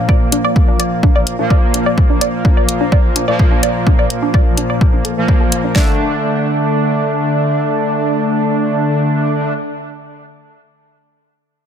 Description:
melodic techno; 127 BPM; 4/4; straight; D minor; A4 = 440 Hz
analog synth brass; stabs; 0.0-9.5 s; Bb2 to D4; -16 LUFS; equal; chorus, sidechain pumping, digital delay
analog pluck; arpeggios; 0.1-6.0 s; D4 to D5; -20 LUFS; right 1 dB; chorus, phaser, sidechain pumping, digital delay
deep house drum kit; drums; 0.1-5.9 s; kick drum, snare drum; -12 LUFS; equal; overdrive
electronic hi-hat; drums; 0.3-5.6 s; -18 LUFS; left 2 dB; soft clipping on snare, sidechain pumping on hats
light reverb; dense, heavily limited modern master; -12 LUFS; side -8 dB against mid
0.0-5.8 A section; 5.8-9.5 B section
0.0 Bb; 5.8 D5

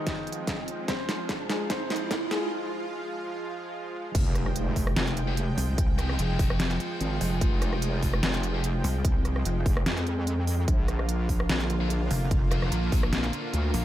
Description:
heavy wobble dubstep; 147 BPM; 4/4; swing 54% on 16ths, half-time; F dorian; A4 = 440 Hz
clear baby grand piano; melody; 0.0-2.5 s; Eb3 to C5; -35 LUFS; left 3 dB; low-pass filter, ping-pong delay
supersaw pad; sustained chords; 0.0-13.8 s; D3 to G5; -34 LUFS; right 2 dB; sidechain pumping
riser and impact; sound effects; 0.2-5.8 s; -36 LUFS; right 1 dB
dubstep drum kit; drums; 0.1-13.8 s; crash cymbal, hi-hat, rim click, snare drum; -32 LUFS; equal
electronic kick drum; drums; 0.1-13.0 s; -27 LUFS; equal
wobble bass; bass; 4.1-13.7 s; F1 to F2; -28 LUFS; equal; chorus, overdrive
thick fuzz guitar; stabs; 5.3-8.6, 11.8-13.8 s; D4 to G5; -36 LUFS; left 3 dB; distortion, ping-pong delay
pulsing pluck wobble bass; bass; 5.6-9.6, 12.1-13.8 s; F1 to C2; -27 LUFS; equal; chorus, overdrive
little or no reverb; high-pass filter; -25 LUFS; side -13 dB against mid
0.0-4.1 A section; 4.1-13.8 B section
build-up 0.0-4.1; drum fill 0.0-2.5; filter sweep on grand piano 0.0-4.1; riser 0.2-2.5; break 2.5-4.1; drop 4.1-13.8; impact 4.1-5.8
0.0 Fmadd9; 10.7 Bb

